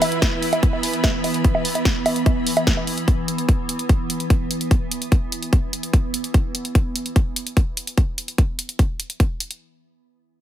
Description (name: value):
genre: psychedelic trance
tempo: 147 BPM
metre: 4/4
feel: straight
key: unclear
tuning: A4 = 440 Hz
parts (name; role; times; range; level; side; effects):
- evolving wavetable pad; sustained chords; 0.0-6.4 s; E3 to B3; -26 LUFS; right 1 dB; ensemble chorus, built-in reverb, sidechain pumping
- big-room dance drum kit; drums; 0.0-9.6 s; bongos, hi-hat, snare drum; -24 LUFS; right 1 dB; none
- warm studio string section; texture; 0.0-3.1 s; E4 to B5; -28 LUFS; right 2 dB; sidechain pumping
- electronic kick drum; drums; 0.2-9.3 s; none; -18 LUFS; equal; none
room: digital ambience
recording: none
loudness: -18 LUFS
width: side -12 dB against mid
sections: 0.0-9.6 A section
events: none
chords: 0.0 E5; 9.6 N.C.